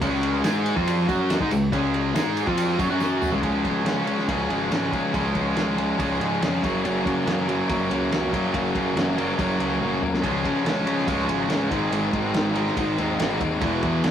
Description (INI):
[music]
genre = classic rock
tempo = 141 BPM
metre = 4/4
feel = straight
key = Db major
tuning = A4 = 440 Hz
[part]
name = overdriven electric guitar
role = riff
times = 0.0-14.1 s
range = Gb2 to Ab4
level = -24 LUFS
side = left 3 dB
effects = none
[part]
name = tight distorted guitar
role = riff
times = 0.0-14.1 s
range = E2 to Ab4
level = -27 LUFS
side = right 6 dB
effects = distortion
[part]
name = fuzz picked electric bass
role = bass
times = 0.0-14.1 s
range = E1 to Db3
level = -31 LUFS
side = right 1 dB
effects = overdrive
[part]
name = cloth-damped thuddy drum kit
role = drums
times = 0.0-14.1 s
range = kick drum, ride cymbal, snare drum, toms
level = -29 LUFS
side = right 1 dB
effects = none
[part]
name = tambourine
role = percussion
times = 0.0-3.3 s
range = none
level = -47 LUFS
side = right 7 dB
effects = none
[sound]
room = moderate small room ambience, RT60 0.5 s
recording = rough rehearsal-room recording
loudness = -21 LUFS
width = side -9 dB against mid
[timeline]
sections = 0.0-3.4 A section; 3.4-14.1 B section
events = drum fill 3.0-3.4, 9.8-10.2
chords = 0.0 Db; 2.9 Gb5; 3.3 Db5; 3.4 Db; 6.6 Gb; 10.2 Db; 11.7 Ab